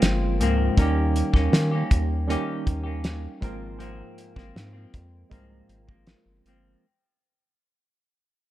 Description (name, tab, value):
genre	indie pop, bedroom pop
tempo	79 BPM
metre	4/4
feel	straight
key	Ab major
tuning	A4 = 437 Hz
part	semi-hollow electric guitar	accompaniment	0.0-6.9 s	Ab2 to G4	-29 LUFS	left 4 dB	wide subtle chorus, warbly pitch drift
part	tine electric piano	accompaniment	0.0-6.9 s	G3 to Bb4	-30 LUFS	right 5 dB	medium stereo tremolo
part	round analog bass	bass	0.0-6.8 s	G1 to Eb3	-26 LUFS	equal	none
part	cloth-damped thuddy drum kit	drums	0.0-6.6 s	hi-hat, kick drum, snare drum	-22 LUFS	equal	none
room	light reverb, small room reverb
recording	dark, warm production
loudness	-21 LUFS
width	side -14 dB against mid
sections	0.0-6.8 A section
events	fade-out 0.0-6.8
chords	0.0 Ab69; 0.8 Eb7; 3.4 Ab69